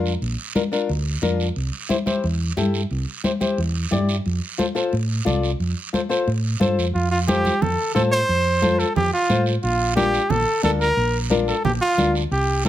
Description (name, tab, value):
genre	latin, cumbia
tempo	178 BPM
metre	4/4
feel	straight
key	F major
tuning	A4 = 444 Hz
part	flamenco guitar	accompaniment	0.0-12.7 s	C4 to D5	-23 LUFS	left 4 dB	none
part	hollow-body short-scale fingered electric bass	bass	0.0-12.7 s	Bb1 to A2	-22 LUFS	right 1 dB	none
part	guiro	percussion	0.1-12.7 s	none	-32 LUFS	right 7 dB	none
part	congas	percussion	0.6-12.7 s	none	-26 LUFS	left 1 dB	none
part	warm trumpet	melody	6.9-12.7 s	F4 to C5	-20 LUFS	right 1 dB	slapback echo
room	light reverb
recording	close, detailed microphones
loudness	-19 LUFS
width	side -12 dB against mid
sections	0.0-6.9 A section; 6.9-12.7 B section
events	none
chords	0.0 Bb; 1.6 C; 4.3 F; 9.6 Bb